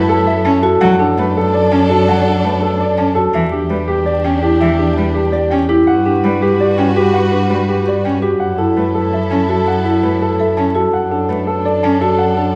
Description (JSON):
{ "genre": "classical, minimalist pattern music", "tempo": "332 BPM (eighths)", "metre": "7/8", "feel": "straight", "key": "B minor", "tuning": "A4 = 441 Hz", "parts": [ { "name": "clear grand piano", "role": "melody", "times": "0.0-12.6 s", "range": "G4 to A5", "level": "-19 LUFS", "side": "equal", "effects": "none" }, { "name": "warm cello", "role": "accompaniment", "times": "0.0-12.0 s", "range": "E3 to C#4", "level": "-23 LUFS", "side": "equal", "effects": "none" }, { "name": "rich chamber string section", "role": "sustained chords", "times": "0.0-12.6 s", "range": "D4 to B4", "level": "-25 LUFS", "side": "equal", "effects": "none" }, { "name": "rich double bass", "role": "bass", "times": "0.0-12.6 s", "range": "E2 to G2", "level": "-22 LUFS", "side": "equal", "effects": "none" }, { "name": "marimba with soft mallets", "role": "arpeggios", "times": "0.3-12.6 s", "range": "D4 to A4", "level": "-20 LUFS", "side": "equal", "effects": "none" } ], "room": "wet recital hall reverb, RT60 1.3 s", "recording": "recorded in a church or concert hall, vinyl crackle, nothing above 10.9 kHz", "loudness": "-14 LUFS", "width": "mono", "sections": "0.0-12.6 A section", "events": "none", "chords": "0.0 F#m7; 0.8 Bm7/F# (rootless); 3.3 Em7; 5.9 Gmaj7; 8.4 F#m7; 10.9 Bm7/F# (rootless)", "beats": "0.09 0.27 0.45 0.63 | 0.81 0.99 1.17 1.35 1.53 1.71 1.89 | 2.07 2.25 2.44 2.62 2.80 2.98 3.16 | 3.34 3.52 3.70 3.88 4.06 4.24 4.42 | 4.60 4.79 4.97 5.15 5.33 5.51 5.69 | 5.87 6.05 6.23 6.41 6.59 6.77 6.95 | 7.13 7.32 7.50 7.68 7.86 8.04 8.22 | 8.40 8.58 8.76 8.94 9.12 9.30 9.48 | 9.66 9.85 10.03 10.21 10.39 10.57 10.75 | 10.93 11.11 11.29 11.47 11.65 11.83 12.01 | 12.20 12.38" }